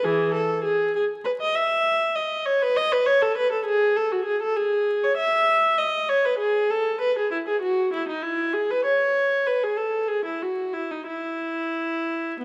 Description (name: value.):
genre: classical, baroque-style suite movement for unaccompanied viola.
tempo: 65 BPM (dotted quarters).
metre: 12/8.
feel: rubato.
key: E major.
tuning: A4 = 442 Hz.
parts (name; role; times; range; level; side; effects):
warm viola; solo; 0.0-12.4 s; E3 to E5; -23 LUFS; equal; none.
room: moderate scoring stage reverb, RT60 1.6 s.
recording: vinyl crackle.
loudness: -23 LUFS.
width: mono.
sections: 0.0-12.4 A section.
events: none.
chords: none.